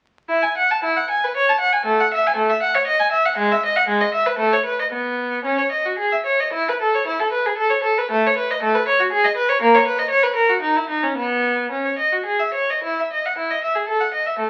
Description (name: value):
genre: classical, baroque-style suite movement for unaccompanied violin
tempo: 102-122 BPM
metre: 3/4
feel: rubato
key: E major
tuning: A4 = 437 Hz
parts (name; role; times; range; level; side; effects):
- rich violin; solo; 0.3-14.5 s; G#3 to A5; -19 LUFS; equal; none
room: moderate large studio reverb, RT60 1.1 s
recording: very old 78 rpm record, vinyl crackle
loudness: -19 LUFS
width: mono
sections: 0.3-12.8 A section; 12.8-14.5 A section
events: none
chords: none